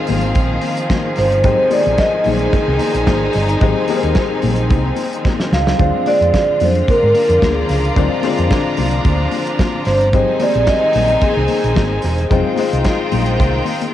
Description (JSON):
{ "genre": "disco", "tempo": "110 BPM", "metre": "4/4", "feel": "straight", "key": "unclear", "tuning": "A4 = 440 Hz", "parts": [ { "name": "clear studio violin section", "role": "second line", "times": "0.0-13.9 s", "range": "C4 to Bb5", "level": "-24 LUFS", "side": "right 1 dB", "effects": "cassette tape" }, { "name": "warm grand piano", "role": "accompaniment", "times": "0.0-13.9 s", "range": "G3 to D5", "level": "-23 LUFS", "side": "left 8 dB", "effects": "cassette tape" }, { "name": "clear studio string section", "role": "sustained chords", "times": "0.0-13.9 s", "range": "D3 to F4", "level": "-23 LUFS", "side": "equal", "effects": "cassette tape" }, { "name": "hollow-body short-scale fingered electric bass", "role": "bass", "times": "0.1-13.6 s", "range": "E1 to Ab2", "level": "-18 LUFS", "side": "right 1 dB", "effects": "none" }, { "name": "warm soul drum kit", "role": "drums", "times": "0.1-13.9 s", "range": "hi-hat, kick drum, snare drum", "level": "-19 LUFS", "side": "right 1 dB", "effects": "none" }, { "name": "congas", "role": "percussion", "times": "0.1-13.9 s", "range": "none", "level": "-25 LUFS", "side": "left 9 dB", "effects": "none" }, { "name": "vibraphone with soft mallets", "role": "melody", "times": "1.2-12.0 s", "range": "Ab4 to F5", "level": "-17 LUFS", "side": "right 1 dB", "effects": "cassette tape, tape echo" } ], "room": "small room ambience", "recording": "home recording on cassette", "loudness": "-13 LUFS", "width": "side -12 dB against mid", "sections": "0.0-13.9 A section", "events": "drum fill 5.2-5.8", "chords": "0.0 Fm7; 1.4 Abmaj7; 5.8 Dm7b5; 10.1 Abmaj7; 12.3 Fm7" }